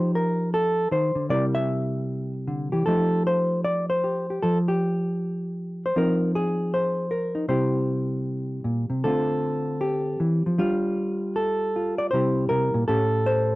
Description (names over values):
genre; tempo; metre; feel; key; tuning
solo jazz; 156 BPM; 4/4; swing 65% on 8ths, rubato; C mixolydian; A4 = 440 Hz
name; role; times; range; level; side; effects
hollow-body jazz guitar; solo; 0.0-13.6 s; A2 to E5; -22 LUFS; equal; none
room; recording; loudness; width
moderate studio reverb, RT60 0.5 s; none; -22 LUFS; side -19 dB against mid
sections
0.0-13.6 A section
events
none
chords
0.0 F9; 1.3 C9; 2.9 F9; 6.0 Fm7; 7.5 C7; 9.0 Dm7; 10.6 Gsus2; 12.1 C7; 12.9 A7#9